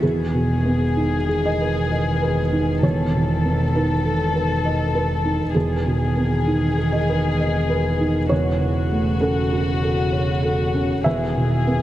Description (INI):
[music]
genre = neoclassical piano and strings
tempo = 66 BPM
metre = 3/4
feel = rubato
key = E major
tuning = A4 = 439 Hz
[part]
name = warm chamber violin section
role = melody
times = 0.0-11.8 s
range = F#4 to A4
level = -26 LUFS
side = left 4 dB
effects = ping-pong delay
[part]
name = dark cello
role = second line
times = 0.0-11.8 s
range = C#3 to D#3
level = -26 LUFS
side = right 2 dB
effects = none
[part]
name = felt-muted upright piano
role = accompaniment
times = 0.0-11.8 s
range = E2 to E5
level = -21 LUFS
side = right 1 dB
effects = none
[part]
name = warm double bass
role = bass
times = 0.0-11.8 s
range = E1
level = -24 LUFS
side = equal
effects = none
[sound]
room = moderate huge ambient reverb, RT60 6.0 s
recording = dreamy mix soaked in reverb, cassette tape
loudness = -18 LUFS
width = side -14 dB against mid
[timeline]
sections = 0.0-11.8 A section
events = none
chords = 0.0 Emaj7; 2.8 B7/E; 5.5 Emaj7; 8.3 A6/E; 11.1 Emaj7